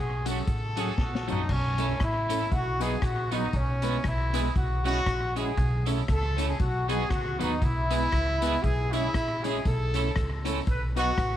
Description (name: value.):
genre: ska.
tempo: 118 BPM.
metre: 4/4.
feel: swing 57% on 8ths.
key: B mixolydian.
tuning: A4 = 440 Hz.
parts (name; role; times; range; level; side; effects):
warm horn section; melody; 0.0-11.4 s; C#4 to B4; -30 LUFS; left 1 dB; none.
upright bass; bass; 0.0-11.4 s; A1 to D#2; -29 LUFS; equal; none.
warm upright piano; stabs; 0.2-11.2 s; F#3 to C#5; -37 LUFS; left 10 dB; none.
clean electric guitar; accompaniment; 0.3-11.1 s; F#3 to A4; -34 LUFS; right 11 dB; harmonic tremolo.
swinging big-band drum kit; drums; 0.3-11.3 s; crash cymbal, hi-hat, kick drum, rim click, snare drum, toms; -31 LUFS; left 1 dB; none.
tambourine; percussion; 0.3-11.1 s; none; -47 LUFS; left 15 dB; slapback echo.
room: moderate spring reverb, RT60 2.4 s.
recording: 1960s-style stereo with parts hard left and right.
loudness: -25 LUFS.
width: side -11 dB against mid.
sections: 0.0-1.5 A section; 1.5-11.4 B section.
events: drum fill 1.0-1.5.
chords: 0.0 F#m; 1.5 A/B; 2.5 B; 3.5 E/B; 4.6 C#m/B; 5.6 A/B; 6.6 B; 7.6 E/B; 8.6 C#m/B; 9.7 A/B; 10.7 B.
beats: 0.47 0.98 | 1.49 2.00 2.51 3.02 | 3.53 4.04 4.55 5.06 | 5.57 6.08 6.59 7.11 | 7.62 8.12 8.63 9.14 | 9.65 10.16 10.67 11.18.